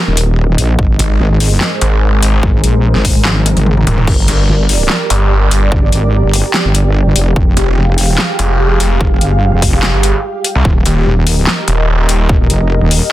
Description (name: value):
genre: heavy wobble dubstep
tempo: 146 BPM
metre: 4/4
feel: half-time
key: G phrygian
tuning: A4 = 440 Hz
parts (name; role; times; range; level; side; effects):
- lush unison pad; sustained chords; 0.0-13.1 s; Ab3 to F5; -19 LUFS; right 1 dB; chorus, phaser, sidechain pumping
- wobble bass; bass; 0.1-13.0 s; Eb1 to Bb1; -12 LUFS; equal; chorus, overdrive
- dubstep drum kit; drums; 0.2-13.0 s; crash cymbal, handclaps, hi-hat, snare drum, toms; -15 LUFS; left 1 dB; none
- electronic kick drum; drums; 0.8-12.4 s; none; -13 LUFS; equal; none
- snarling distorted saw bass; bass; 1.0-12.3 s; Eb1 to C2; -12 LUFS; equal; distortion, overdrive
room: little or no reverb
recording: dense, heavily limited modern master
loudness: -9 LUFS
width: side -15 dB against mid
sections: 0.0-13.1 A section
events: drum fill 3.3-4.1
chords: 0.0 Eb; 0.8 Abadd9; 4.1 Gm; 7.4 Fmadd9; 10.7 Eb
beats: 0.38 | 0.79 1.20 1.61 2.02 | 2.43 2.84 3.25 3.66 | 4.08 4.49 4.90 5.31 | 5.72 6.13 6.54 6.95 | 7.36 7.77 8.18 8.60 | 9.01 9.42 9.83 10.24 | 10.65 11.06 11.47 11.88 | 12.29 12.71 13.12